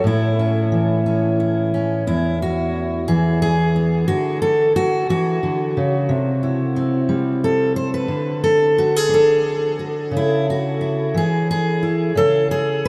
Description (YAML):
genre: folk, solo fingerstyle acoustic guitar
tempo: 59 BPM (dotted quarters)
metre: 6/8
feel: straight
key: E mixolydian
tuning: A4 = 444 Hz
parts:
  - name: fingerpicked steel-string acoustic guitar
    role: solo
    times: 0.0-12.9 s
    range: E2 to C5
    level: -19 LUFS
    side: equal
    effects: none
room: wet huge ambient reverb, RT60 8.0 s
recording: in a vast, echoing space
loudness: -19 LUFS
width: mono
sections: 0.0-2.1 A section; 2.1-12.9 B section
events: none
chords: 0.0 A; 2.1 E; 4.1 D; 6.1 C; 8.1 D; 10.1 C#m; 12.2 F#madd9/C# (rootless)